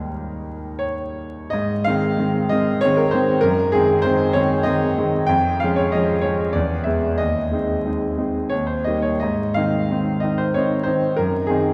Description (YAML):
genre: classical, romantic character piece for solo piano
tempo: 82-100 BPM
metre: 3/4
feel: rubato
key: Ab major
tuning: A4 = 438 Hz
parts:
  - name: clear grand piano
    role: solo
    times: 0.0-11.7 s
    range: Eb2 to G5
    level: -20 LUFS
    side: equal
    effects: none
room: wet church reverb, RT60 3.8 s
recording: recorded in a church or concert hall, vinyl crackle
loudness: -20 LUFS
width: mono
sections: 0.0-1.5 A section; 1.5-11.7 B section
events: none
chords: 0.0 Eb; 1.5 Ab; 3.4 Ab7/Gb; 5.3 Db/F; 6.5 E7; 7.2 Ab/Eb; 8.5 Eb; 9.2 Ab; 11.2 Ab9/Gb